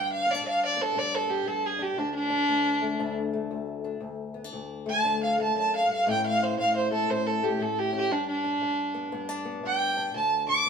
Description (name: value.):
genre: acoustic country blues, solo or duo.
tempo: 118 BPM.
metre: 4/4.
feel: swing 64% on 8ths.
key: unclear.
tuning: A4 = 436 Hz.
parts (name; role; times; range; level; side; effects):
dark fiddle; melody; 0.0-10.7 s; D4 to D6; -25 LUFS; right 2 dB; none.
fingerpicked old ladder-braced acoustic guitar; accompaniment; 0.0-10.7 s; D2 to E4; -32 LUFS; left 5 dB; none.
room: moderate studio reverb, RT60 0.9 s.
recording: band playing live in one room.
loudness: -25 LUFS.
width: side -6 dB against mid.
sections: 0.0-10.7 A section.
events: fiddle solo 0.0-10.7.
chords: 0.0 G; 2.0 D5; 6.1 A; 8.1 G; 10.1 D5.